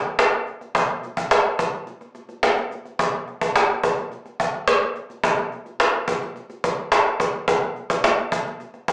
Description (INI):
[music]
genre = pop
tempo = 107 BPM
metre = 4/4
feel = straight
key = none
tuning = none
[part]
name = cajon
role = drums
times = 0.0-8.9 s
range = none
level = -22 LUFS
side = equal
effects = none
[sound]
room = wet small room reverb, RT60 0.6 s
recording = rough rehearsal-room recording, tube saturation, small speaker sound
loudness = -22 LUFS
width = mono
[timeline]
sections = 0.0-3.0 A section; 3.0-8.9 B section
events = break 1.9-3.0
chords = none